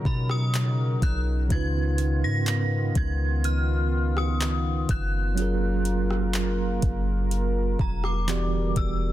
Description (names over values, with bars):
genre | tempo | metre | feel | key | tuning
contemporary R&B | 62 BPM | 4/4 | straight | unclear | A4 = 444 Hz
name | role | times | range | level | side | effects
synth chime | melody | 0.0-9.1 s | Bb5 to Bb6 | -34 LUFS | left 1 dB | ensemble chorus, phaser
tine electric piano | accompaniment | 0.0-9.1 s | B2 to D5 | -30 LUFS | right 4 dB | medium stereo tremolo
warm analog pad | sustained chords | 0.0-9.1 s | C#3 to A#4 | -33 LUFS | equal | chorus
soft 808-style bass | bass | 0.1-9.1 s | Fb1 to B2 | -25 LUFS | equal | none
smooth R&B drum kit | drums | 0.1-9.0 s | handclaps, hi-hat, kick drum, rim click | -28 LUFS | equal | none
room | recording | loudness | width
digital ambience | dense, heavily limited modern master | -22 LUFS | side -14 dB against mid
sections
0.0-9.1 A section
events
none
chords
0.0 Bmaj9#11; 1.5 Db9; 5.4 Gbmaj7; 8.3 Em9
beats
0.54 | 1.50 2.47 3.44 4.41 | 5.38 6.34 7.31 8.28